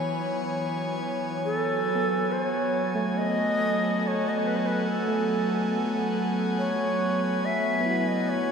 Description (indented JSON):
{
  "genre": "ambient",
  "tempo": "70 BPM",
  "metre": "3/4",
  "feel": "straight",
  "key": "F# dorian",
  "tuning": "A4 = 439 Hz",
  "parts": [
    { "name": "airy breathy pad", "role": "sustained chords", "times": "0.0-8.5 s", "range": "E3 to B5", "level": "-27 LUFS", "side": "equal", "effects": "chorus, shimmer reverb" },
    { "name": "bowed-like drone", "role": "drone", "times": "0.0-1.5 s", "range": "F#3 to F#4", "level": "-45 LUFS", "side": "left 3 dB", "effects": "none" },
    { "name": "bright shakuhachi", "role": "melody", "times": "1.4-8.5 s", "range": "A4 to E5", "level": "-27 LUFS", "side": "equal", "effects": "shimmer reverb, tape echo" },
    { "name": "overdriven tine electric piano", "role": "arpeggios", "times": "2.0-8.5 s", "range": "A3 to F#4", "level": "-31 LUFS", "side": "equal", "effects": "tape echo" }
  ],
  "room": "wet cathedral reverb, RT60 5.2 s",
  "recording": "none",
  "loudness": "-24 LUFS",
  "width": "side -6 dB against mid",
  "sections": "0.0-1.4 A section; 1.4-8.5 B section",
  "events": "none",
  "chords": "0.0 E; 1.4 F#m"
}